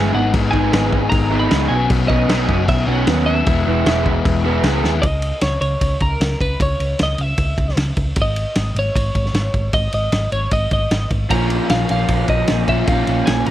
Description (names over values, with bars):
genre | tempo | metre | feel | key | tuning
indie rock | 153 BPM | 4/4 | straight | unclear | A4 = 440 Hz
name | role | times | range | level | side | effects
twelve-string electric guitar | melody | 0.0-13.5 s | A#4 to B5 | -23 LUFS | equal | tape echo
bright tonewheel organ | sustained chords | 0.0-5.0 s | C#4 to G#5 | -30 LUFS | equal | none
crunchy overdriven guitar | riff | 0.0-5.0, 11.3-13.5 s | G#2 to E4 | -21 LUFS | left 7 dB | none
raw garage guitar | riff | 0.0-4.9, 11.3-13.5 s | A#2 to E4 | -22 LUFS | right 7 dB | overdrive, analog chorus
hollow-body short-scale picked electric bass | bass | 0.0-13.5 s | E1 to D#2 | -20 LUFS | equal | none
loose indie drum kit | drums | 0.3-13.5 s | crash cymbal, kick drum, ride cymbal, snare drum | -21 LUFS | equal | none
room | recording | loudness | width
little or no reverb | dry, close 1970s-style studio recording | -15 LUFS | side -13 dB against mid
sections
0.0-5.0 A section; 5.0-13.5 B section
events
drum fill 4.8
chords
0.1 G#m; 1.7 Bsus2; 3.5 Eadd9; 5.0 N.C.; 8.2 G#5; 11.3 A#m